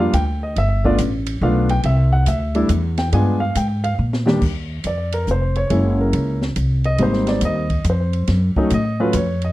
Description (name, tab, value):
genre	jazz piano trio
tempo	140 BPM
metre	3/4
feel	swing 66% on 8ths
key	unclear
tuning	A4 = 440 Hz
part	warm grand piano	melody	0.0-9.5 s	Eb2 to Ab5	-20 LUFS	equal	slapback echo
part	upright bass	bass	0.0-9.5 s	F1 to Bb2	-18 LUFS	equal	none
part	open jazz drum kit	drums	0.1-9.5 s	crash cymbal, hi-hat, kick drum, ride cymbal, snare drum	-26 LUFS	equal	none
room	little or no reverb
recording	dry, close 1970s-style studio recording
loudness	-16 LUFS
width	side -16 dB against mid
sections	0.0-4.4 A section; 4.4-9.5 B section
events	drum fill 4.0-4.4; grand piano solo 4.4-9.5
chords	0.0 Gm7; 0.6 G9; 1.8 Cadd9; 3.1 G7b9; 4.0 Bb6; 4.4 Ebsus2; 5.7 Gb9; 7.0 Abmaj9; 8.3 F7b9b13